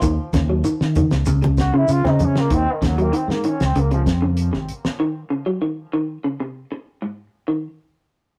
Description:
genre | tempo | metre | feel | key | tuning
afrobeat | 96 BPM | 4/4 | straight | unclear | A4 = 439 Hz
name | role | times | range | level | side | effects
brilliant trombone | melody | 0.0-4.0 s | Eb3 to Gb4 | -27 LUFS | equal | tape echo
electric guitar through a small old amp | arpeggios | 0.0-7.7 s | Ab2 to C4 | -26 LUFS | equal | none
fingered electric bass | bass | 0.0-4.9 s | Ab1 to Eb3 | -21 LUFS | equal | none
damped 70s drum kit | drums | 0.0-5.0 s | hi-hat, kick drum, snare drum | -26 LUFS | equal | none
shekere | percussion | 0.0-2.4 s | none | -34 LUFS | equal | none
congas | percussion | 0.3-2.4 s | none | -24 LUFS | equal | none
room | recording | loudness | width
light reverb | rough rehearsal-room recording, warm saturation | -20 LUFS | mono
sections
0.0-7.5 A section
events
trombone solo 0.0-7.5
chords
0.0 Eb7(no3); 1.3 Dbmaj7(no3); 2.5 Eb7(no3); 3.8 Dbmaj7; 5.0 N.C.; 6.2 Db5; 7.5 N.C.

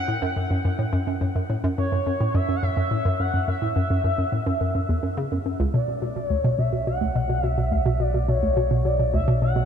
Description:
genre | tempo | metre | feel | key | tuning
ambient, sequencer-driven space music | 106 BPM | 4/4 | straight | B minor | A4 = 440 Hz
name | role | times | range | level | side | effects
expressive portamento lead | melody | 0.0-9.7 s | C#5 to F#5 | -27 LUFS | left 1 dB | wide subtle chorus, ping-pong delay
hollow square pluck | riff | 0.1-9.6 s | C#2 to C#3 | -23 LUFS | equal | chorus, ping-pong delay
fat analog bass | bass | 5.7-9.7 s | B1 | -27 LUFS | equal | none
room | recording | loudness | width
moderate huge ambient reverb, RT60 8.3 s | dark, warm production | -21 LUFS | side -8 dB against mid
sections
0.0-5.7 A section; 5.7-9.7 B section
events
none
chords
0.0 F#7(no3); 5.7 Bm

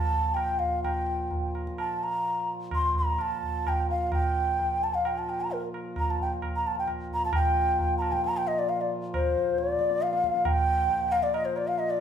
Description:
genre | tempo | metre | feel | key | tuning
indian classical, Hindustani | 131 BPM | 7/4 | uneven beats | Bb raga bilaval | A4 = 443 Hz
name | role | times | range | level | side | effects
mellow hollow bansuri | melody | 0.0-12.0 s | Bb4 to C6 | -26 LUFS | equal | none
pedal harmonium | drone | 0.0-12.0 s | Bb2 to F3 | -36 LUFS | equal | none
tabla | percussion | 0.1-11.9 s | none | -31 LUFS | right 1 dB | none
room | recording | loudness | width
wet large studio reverb, RT60 0.9 s | band playing live in one room | -25 LUFS | side -8 dB against mid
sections
0.0-7.3 A section; 7.3-12.0 B section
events
speeding up 0.0-12.0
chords
none

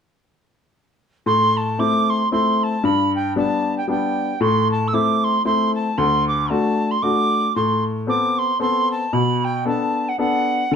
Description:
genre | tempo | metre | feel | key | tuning
celtic folk, Celtic waltz | 114 BPM | 3/4 | swing 57% on 8ths | A dorian | A4 = 440 Hz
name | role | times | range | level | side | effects
mid whistle | melody | 1.3-10.8 s | F#5 to E6 | -20 LUFS | right 3 dB | plate reverb
bright upright piano | accompaniment | 1.3-10.8 s | D2 to A4 | -20 LUFS | left 3 dB | none
room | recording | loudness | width
moderate studio reverb, RT60 0.5 s | dark, warm production | -17 LUFS | side -7 dB against mid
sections
1.3-10.8 A section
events
none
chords
1.3 Am; 2.8 G; 4.4 Am; 6.0 D; 7.6 Amadd9; 9.1 Bm7

